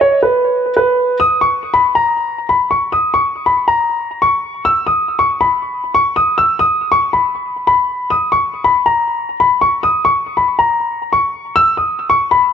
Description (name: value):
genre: hip hop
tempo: 139 BPM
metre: 4/4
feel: half-time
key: unclear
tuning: A4 = 440 Hz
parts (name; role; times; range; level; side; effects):
- dark concert grand piano; solo; 0.0-12.5 s; Cb5 to Fb6; -12 LUFS; left 1 dB; tape echo
room: light reverb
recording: dark, warm production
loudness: -12 LUFS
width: side -7 dB against mid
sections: 0.0-1.2 A section; 1.2-12.5 B section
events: none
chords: none